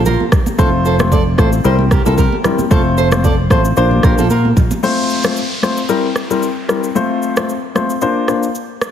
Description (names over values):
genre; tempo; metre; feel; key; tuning
afrobeats; 113 BPM; 4/4; swing 55% on 16ths; F major; A4 = 440 Hz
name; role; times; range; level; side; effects
nylon-string guitar; riff; 0.0-4.5 s; F4 to D5; -19 LUFS; right 5 dB; ping-pong delay
fingered electric bass; bass; 0.0-4.7 s; F1 to Bb2; -15 LUFS; equal; none
afro-pop drum kit; drums; 0.1-8.9 s; kick drum, rim click, shaker; -16 LUFS; equal; none
congas; percussion; 0.1-4.8 s; none; -22 LUFS; right 3 dB; none
dark baby grand piano; accompaniment; 0.6-8.4 s; G3 to C5; -16 LUFS; left 4 dB; none
downlifter; sound effects; 4.8-8.9 s; none; -26 LUFS; right 1 dB; none
room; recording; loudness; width
light reverb; heavily compressed radio sound; -12 LUFS; side -9 dB against mid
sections
0.0-4.8 A section; 4.8-8.9 B section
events
none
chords
0.0 Bb5; 0.6 F; 1.6 C7; 2.7 F; 3.8 Bbadd9; 4.8 F; 5.9 C7; 7.0 F; 8.0 Bbadd9